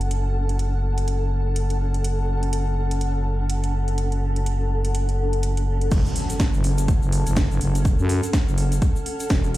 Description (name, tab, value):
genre	bass house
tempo	124 BPM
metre	4/4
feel	swing 59% on 16ths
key	F# minor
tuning	A4 = 440 Hz
part	growling FM bass	bass	0.0-9.6 s	E1 to F#2	-22 LUFS	equal	tube saturation, sidechain pumping
part	house drum kit	drums	0.0-9.6 s	crash cymbal, hi-hat, snare drum	-30 LUFS	right 2 dB	small room ambience
part	granular cloud pad	texture	0.0-9.6 s	C#4 to A5	-29 LUFS	left 1 dB	built-in reverb, sidechain pumping
part	electronic kick drum	drums	5.9-9.4 s	none	-20 LUFS	equal	overdrive, small room ambience
part	egg shaker	percussion	5.9-9.5 s	none	-38 LUFS	left 2 dB	none
part	impact	sound effects	5.9-7.9 s	none	-30 LUFS	equal	none
room	little or no reverb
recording	played on a big sound system in a bare room, stone room reverb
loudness	-20 LUFS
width	side -16 dB against mid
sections	0.0-5.9 A section; 5.9-9.6 B section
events	drop 5.9-9.6; impact 5.9-7.9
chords	0.0 F#m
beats	| 0.11 0.59 1.08 1.56 | 2.04 2.53 3.01 3.50 | 3.98 4.46 4.95 5.43 | 5.92 6.40 6.88 7.37 | 7.85 8.34 8.82 9.30